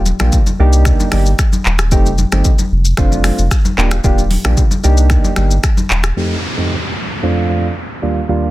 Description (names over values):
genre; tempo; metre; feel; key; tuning
afrobeats; 113 BPM; 4/4; straight; F mixolydian; A4 = 439 Hz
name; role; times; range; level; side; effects
saturated sub bass; bass; 0.0-6.1 s; Eb1 to C2; -12 LUFS; equal; none
afro-pop drum kit; drums; 0.1-6.2 s; finger snaps, handclaps, hi-hat, kick drum, rim click, shaker; -14 LUFS; equal; soft clipping on snare
congas; percussion; 0.1-5.9 s; none; -23 LUFS; left 3 dB; none
soft electric-piano-like synth keys; accompaniment; 0.2-8.5 s; Eb2 to G4; -18 LUFS; right 2 dB; chorus, low-pass filter
downlifter; sound effects; 6.2-8.5 s; none; -22 LUFS; equal; none
room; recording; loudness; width
little or no reverb; dense, heavily limited modern master; -11 LUFS; side -17 dB against mid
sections
0.0-6.2 A section; 6.2-8.5 B section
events
filter sweep on synth keys 6.2-8.5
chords
0.0 Ebmaj7; 0.6 Cm7; 1.9 F7; 3.0 F6; 3.8 Ebmaj7; 4.8 Cm7; 6.2 F7; 7.2 F6